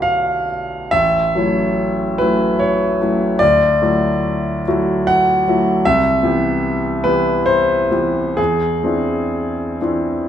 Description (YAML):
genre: classical, impressionist solo piano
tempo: 73 BPM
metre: 3/4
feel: uneven beats, rubato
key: A mixolydian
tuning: A4 = 444 Hz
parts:
  - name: clear grand piano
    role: solo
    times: 0.0-10.3 s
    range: A1 to G5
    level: -14 LUFS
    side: equal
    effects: none
room: moderate recital hall reverb, RT60 1.3 s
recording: minimal, uncompressed stereo recording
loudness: -14 LUFS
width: side -10 dB against mid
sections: 0.9-10.3 A section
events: none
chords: 0.0 Bm11; 0.9 A6; 3.4 Dadd9; 5.8 Cmaj7; 8.4 Eaug7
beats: 0.05 | 0.93 1.79 2.60 | 3.41 4.24 5.06 | 5.84 6.64 7.47 | 8.38 9.31